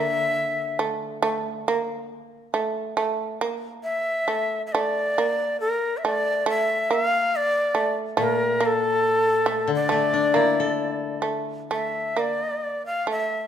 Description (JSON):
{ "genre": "japanese traditional, Japanese chamber music", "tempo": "69 BPM", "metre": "2/4", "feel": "rubato", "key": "unclear", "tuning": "A4 = 440 Hz", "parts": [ { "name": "breathy bright shakuhachi", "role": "melody", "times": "0.0-0.8, 3.8-13.5 s", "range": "A4 to F5", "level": "-23 LUFS", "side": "left 1 dB", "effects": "none" }, { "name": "shamisen", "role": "second line", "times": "0.0-13.5 s", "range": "A3 to Bb3", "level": "-26 LUFS", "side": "right 4 dB", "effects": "none" }, { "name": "koto", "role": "accompaniment", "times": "0.0-2.1, 8.2-12.4 s", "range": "Bb2 to A4", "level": "-28 LUFS", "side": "left 7 dB", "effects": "none" } ], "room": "moderate recital hall reverb, RT60 1.6 s", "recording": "minimal, uncompressed stereo recording", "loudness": "-21 LUFS", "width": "side -9 dB against mid", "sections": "0.0-11.7 A section; 11.7-13.5 B section", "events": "none", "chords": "none", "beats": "0.36 | 1.21 2.08 | 2.96 3.85 | 4.74 5.62 | 6.48 7.34 | 8.20 9.04 | 9.91 10.79 | 11.71 12.63" }